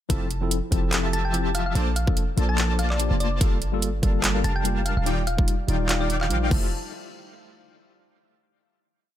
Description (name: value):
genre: future bass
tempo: 145 BPM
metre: 4/4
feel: swing 55% on 16ths, half-time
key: F major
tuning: A4 = 441 Hz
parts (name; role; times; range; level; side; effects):
- tine electric piano; accompaniment; 0.1-6.7 s; F3 to D5; -30 LUFS; left 2 dB; medium stereo tremolo, sidechain pumping, ping-pong delay
- airy dreamy lead; arpeggios; 0.1-6.7 s; G5 to A5; -39 LUFS; right 1 dB; chorus, sidechain pumping
- big bright polysynth; riff; 0.1-6.7 s; Eb3 to A5; -32 LUFS; left 1 dB; wide subtle chorus, sidechain pumping
- warm 808-style bass; bass; 0.1-6.7 s; Eb1 to Bb1; -25 LUFS; equal; sidechain pumping
- electronic kick drum; drums; 0.1-6.6 s; none; -23 LUFS; equal; overdrive
- trap drum kit; drums; 0.1-6.6 s; crash cymbal, handclaps, hi-hat; -28 LUFS; right 1 dB; none
- thumb-piano-like synth pluck; melody; 1.1-6.7 s; D5 to A5; -32 LUFS; equal; chorus, sidechain pumping, dub echo
room: digital ambience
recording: none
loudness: -21 LUFS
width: side -12 dB against mid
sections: 0.1-6.7 drop; 6.7-8.4 final hit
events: drop 0.1-6.7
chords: 0.1 Fmaj7; 1.8 Bbmaj7; 3.4 Gm9; 5.1 Ebmaj9; 6.5 Fmaj7; 6.7 N.C.